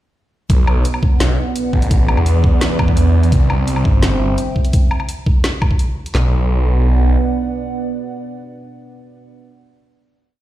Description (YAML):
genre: half-time drum and bass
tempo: 170 BPM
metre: 4/4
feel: half-time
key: B phrygian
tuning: A4 = 441 Hz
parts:
  - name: dark analog pad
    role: sustained chords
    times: 0.5-9.4 s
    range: B3 to G5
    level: -23 LUFS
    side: right 3 dB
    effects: chorus, sidechain pumping
  - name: phased detuned saw bass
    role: bass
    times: 0.5-7.2 s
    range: G1 to E2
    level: -14 LUFS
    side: equal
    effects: phaser
  - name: drum and bass drum kit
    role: drums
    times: 0.5-6.2 s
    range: handclaps, kick drum, snare drum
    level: -14 LUFS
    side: equal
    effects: overdrive
  - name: drum and bass drum kit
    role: drums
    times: 0.5-6.1 s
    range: hi-hat, snare drum, woodblock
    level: -23 LUFS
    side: left 1 dB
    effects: overdrive
room: little or no reverb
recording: played on a big sound system in a bare room, large studio reverb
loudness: -13 LUFS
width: side -14 dB against mid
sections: 0.5-6.1 drop; 6.1-9.0 final chord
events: drop 0.5-6.1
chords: 0.5 Bm; 3.3 C; 6.1 Bm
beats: | 0.50 0.85 1.21 1.56 | 1.91 2.26 2.62 2.97 | 3.32 3.67 4.03 4.38 | 4.73 5.09 5.44 5.79 | 6.15 6.50 6.85 7.21 | 7.56 7.91 8.26 8.62